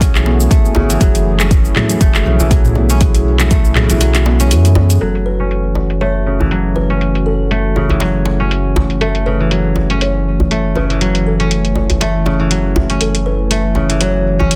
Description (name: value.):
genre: afro house.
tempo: 120 BPM.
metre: 4/4.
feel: swing 55% on 16ths.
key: F# minor.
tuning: A4 = 440 Hz.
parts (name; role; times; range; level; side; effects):
warm analog pad; sustained chords; 0.0-14.6 s; E3 to G#5; -24 LUFS; equal; chorus, sidechain pumping.
kora; arpeggios; 0.0-14.6 s; C#3 to C#4; -21 LUFS; equal; sidechain pumping, low-pass filter, delay.
felt-muted upright piano; stabs; 0.0-5.0 s; A3 to G#4; -25 LUFS; equal; sidechain pumping, low-pass filter, delay.
warm sub bass; bass; 0.0-14.6 s; F#1 to F#2; -18 LUFS; equal; sidechain pumping.
afro-pop drum kit; drums; 0.0-14.6 s; handclaps, hi-hat, shaker, toms; -22 LUFS; equal; low-pass filter on perc, low-pass filter on snare, low-pass filter on hats, low-pass filter on toms.
electronic kick drum; drums; 0.0-3.6 s; none; -14 LUFS; equal; overdrive.
djembe; percussion; 0.0-14.5 s; none; -21 LUFS; equal; none.
congas; percussion; 0.3-4.9 s; none; -26 LUFS; equal; none.
kalimba; melody; 5.0-14.6 s; A4 to C#5; -26 LUFS; equal; delay.
room: light reverb, studio reverb.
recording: dense, heavily limited modern master.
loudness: -14 LUFS.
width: mono.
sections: 0.0-5.0 A section; 5.0-14.6 B section.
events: kick drops out 4.0-5.0; filter sweep on kora 5.0-14.6.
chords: 0.0 F#m9.